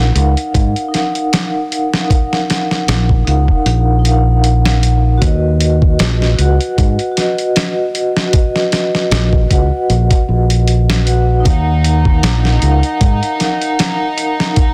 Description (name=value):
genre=trip hop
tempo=77 BPM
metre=4/4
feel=swing 55% on 16ths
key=Eb minor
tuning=A4 = 438 Hz
part: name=vibraphone with soft mallets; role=accompaniment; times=0.0-14.7 s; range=Eb4 to Gb5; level=-20 LUFS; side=equal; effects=tremolo, tape echo
part: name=fingered electric bass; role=bass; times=0.0-13.2 s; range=Bb1 to Ab2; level=-15 LUFS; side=equal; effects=none
part: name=boom bap sampler-style drum kit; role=drums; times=0.2-14.7 s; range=hi-hat, kick drum, snare drum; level=-17 LUFS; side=equal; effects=small room ambience
part: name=rich chamber string section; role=sustained chords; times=11.4-14.7 s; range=Eb4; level=-24 LUFS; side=equal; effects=none
room=little or no reverb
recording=dense, heavily limited modern master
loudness=-14 LUFS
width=mono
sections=0.0-14.7 A section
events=none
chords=0.0 Ebmadd9; 5.2 B; 11.5 Ebmadd9